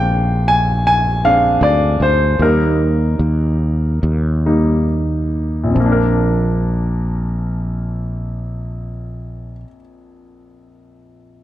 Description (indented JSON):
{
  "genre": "pop ballad",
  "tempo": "67-80 BPM",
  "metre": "4/4",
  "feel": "straight",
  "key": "Bb major",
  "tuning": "A4 = 440 Hz",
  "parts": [
    { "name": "warm grand piano", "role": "accompaniment", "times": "0.0-11.4 s", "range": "Bb1 to Ab5", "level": "-17 LUFS", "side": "equal", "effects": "none" },
    { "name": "sustaining fretless electric bass", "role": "bass", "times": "0.0-9.6 s", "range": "Bb1 to Eb2", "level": "-17 LUFS", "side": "equal", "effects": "none" }
  ],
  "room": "light reverb, small room ambience",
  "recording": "dark, warm production",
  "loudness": "-14 LUFS",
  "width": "side -13 dB against mid",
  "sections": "0.0-5.8 A section; 5.8-9.4 B section",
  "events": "slowing down 0.0-5.8; grand piano solo 0.0-5.8",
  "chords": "0.0 Bb7; 2.4 Eb; 5.8 Bb"
}